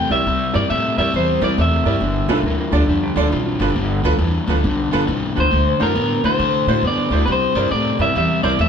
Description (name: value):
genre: blues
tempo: 137 BPM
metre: 4/4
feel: swing 64% on 8ths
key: G mixolydian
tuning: A4 = 440 Hz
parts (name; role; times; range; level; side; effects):
- electric guitar through a small old amp; melody; 0.0-8.7 s; Bb4 to G5; -20 LUFS; equal; none
- overdriven semi-hollow guitar; riff; 0.0-8.7 s; G2 to B3; -20 LUFS; left 3 dB; none
- upright bass; bass; 0.0-8.7 s; G1 to C3; -21 LUFS; equal; none
- bright upright piano; accompaniment; 0.1-8.5 s; E4 to D5; -25 LUFS; right 5 dB; none
- clean lap steel guitar; second line; 2.3-4.0 s; D4 to Bb4; -26 LUFS; right 4 dB; none
room: wet stone room reverb, RT60 1.3 s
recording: band playing live in one room, lossy compression artefacts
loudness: -16 LUFS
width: side -7 dB against mid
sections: 0.0-8.7 A section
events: none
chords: 0.0 C7; 2.0 G7; 5.5 D7; 7.3 C7